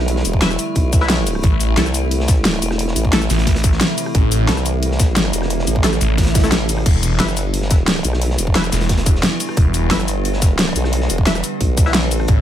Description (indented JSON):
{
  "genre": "dark technical drum and bass",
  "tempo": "177 BPM",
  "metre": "4/4",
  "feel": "straight",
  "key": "E minor",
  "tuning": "A4 = 439 Hz",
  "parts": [
    { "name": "metallic inharmonic drone", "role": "sustained chords", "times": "0.0-12.4 s", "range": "C3 to E4", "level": "-24 LUFS", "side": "equal", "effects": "chorus, built-in reverb, sidechain pumping" },
    { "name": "formant-sweep wobble bass", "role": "bass", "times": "0.0-12.3 s", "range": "E1 to C2", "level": "-20 LUFS", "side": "equal", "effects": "chorus" },
    { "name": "dubstep drum kit", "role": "drums", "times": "0.0-12.4 s", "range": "crash cymbal, hi-hat, rim click, shaker, snare drum", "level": "-19 LUFS", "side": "equal", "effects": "none" },
    { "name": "crunchy breakbeat drum kit", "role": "drums", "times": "0.1-12.4 s", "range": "hi-hat, snare drum", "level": "-29 LUFS", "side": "equal", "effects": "none" },
    { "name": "electronic kick drum", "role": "drums", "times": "0.3-12.4 s", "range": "none", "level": "-15 LUFS", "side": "equal", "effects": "none" },
    { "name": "filtered dub chord stab", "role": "stabs", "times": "0.4-12.3 s", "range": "A3 to E5", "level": "-26 LUFS", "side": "left 2 dB", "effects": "phaser, vintage 12-bit sampler grit, ping-pong delay" },
    { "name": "phased detuned saw bass", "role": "bass", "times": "1.4-9.9, 12.3-12.4 s", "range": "E1 to A1", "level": "-18 LUFS", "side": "equal", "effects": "phaser, overdrive, sidechain pumping" },
    { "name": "swell", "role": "sound effects", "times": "6.3-6.9 s", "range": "none", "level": "-27 LUFS", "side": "right 4 dB", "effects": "none" }
  ],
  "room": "little or no reverb",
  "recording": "none",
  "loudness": "-14 LUFS",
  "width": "side -11 dB against mid",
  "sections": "0.0-12.4 A section",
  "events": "swell 6.3-6.9",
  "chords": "0.0 Em7; 1.4 Am; 6.9 Em7",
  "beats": "| 0.08 0.42 0.76 1.10 | 1.44 1.77 2.11 2.45 | 2.79 3.13 3.47 3.81 | 4.15 4.49 4.83 5.17 | 5.50 5.84 6.18 6.52 | 6.86 7.20 7.54 7.88 | 8.21 8.55 8.89 9.23 | 9.57 9.91 10.25 10.59 | 10.93 11.27 11.61 11.94 | 12.28"
}